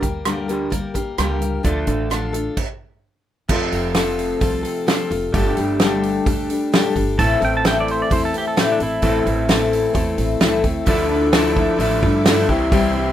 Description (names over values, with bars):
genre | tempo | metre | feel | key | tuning
folk rock and heartland rock | 130 BPM | 4/4 | straight | D minor | A4 = 440 Hz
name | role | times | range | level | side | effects
picked steel-string acoustic guitar | accompaniment | 0.0-13.1 s | G2 to Bb4 | -20 LUFS | left 5 dB | none
electric guitar through a small old amp | riff | 0.0-13.1 s | F2 to A4 | -24 LUFS | right 3 dB | none
upright bass | bass | 0.0-13.1 s | F1 to G2 | -25 LUFS | right 1 dB | none
natural country drum kit | drums | 0.0-12.8 s | crash cymbal, hi-hat, kick drum, rim click, snare drum | -21 LUFS | right 1 dB | none
pedal steel guitar | second line | 7.2-10.2 s | D4 to A5 | -23 LUFS | right 3 dB | none
bright tonewheel organ | sustained chords | 10.9-13.1 s | G4 to D6 | -31 LUFS | right 1 dB | slow rotary speaker, overdrive
room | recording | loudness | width
light reverb | rough home demo mix | -16 LUFS | side -11 dB against mid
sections
0.0-3.5 A section; 3.5-10.9 B section; 10.9-13.1 C section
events
stop 2.6-3.5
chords
0.0 Gm; 1.6 Dm; 3.5 F; 5.3 Gsus2; 7.2 Am; 10.9 Dmadd9; 12.5 C